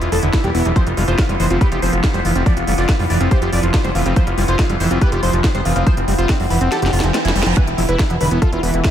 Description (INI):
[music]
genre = psychedelic trance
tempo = 141 BPM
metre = 4/4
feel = straight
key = unclear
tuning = A4 = 440 Hz
[part]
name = wide unison lead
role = melody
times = 0.0-8.9 s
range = C4 to D5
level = -23 LUFS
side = equal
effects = phaser, sidechain pumping, ping-pong delay
[part]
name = overtone-sweeping drone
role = sustained chords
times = 0.0-8.9 s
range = E3 to B3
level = -23 LUFS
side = left 1 dB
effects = chorus, built-in reverb, sidechain pumping
[part]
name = overdriven acid bass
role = riff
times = 0.0-8.9 s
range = D3 to G4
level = -22 LUFS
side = equal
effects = distortion, auto-pan, sidechain pumping, ping-pong delay
[part]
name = fat analog bass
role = bass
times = 0.0-8.8 s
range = E1 to F1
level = -19 LUFS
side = equal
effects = none
[part]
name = techno drum kit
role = drums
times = 0.0-8.9 s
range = hi-hat, snare drum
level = -25 LUFS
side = equal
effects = none
[part]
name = electronic kick drum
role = drums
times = 0.3-8.9 s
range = none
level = -16 LUFS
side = equal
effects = none
[part]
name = reverse cymbal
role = sound effects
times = 7.0-7.6 s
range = none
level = -28 LUFS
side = right 5 dB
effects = none
[part]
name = resonant blip pluck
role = second line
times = 8.1-8.2 s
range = B3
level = -34 LUFS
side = right 1 dB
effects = none
[sound]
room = light reverb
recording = none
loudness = -14 LUFS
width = side -10 dB against mid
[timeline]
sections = 0.0-8.9 A section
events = kick drops out 6.7-7.6; drum fill 6.7-7.6; reverse cymbal 7.0-7.6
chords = 0.0 E5; 0.8 F5; 7.6 E5